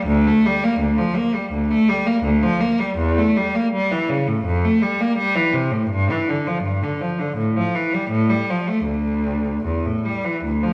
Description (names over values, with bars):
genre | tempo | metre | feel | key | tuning
classical, baroque-style suite movement for unaccompanied cello | 82 BPM | 4/4 | rubato | D minor | A4 = 440 Hz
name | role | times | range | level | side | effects
clear cello | solo | 0.0-10.7 s | D2 to Bb3 | -20 LUFS | equal | none
room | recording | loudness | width
wet stone room reverb, RT60 1.2 s | worn, warbling old tape, cassette tape, warbly pitch drift, nothing above 10.8 kHz | -20 LUFS | mono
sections
0.0-10.7 A section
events
none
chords
none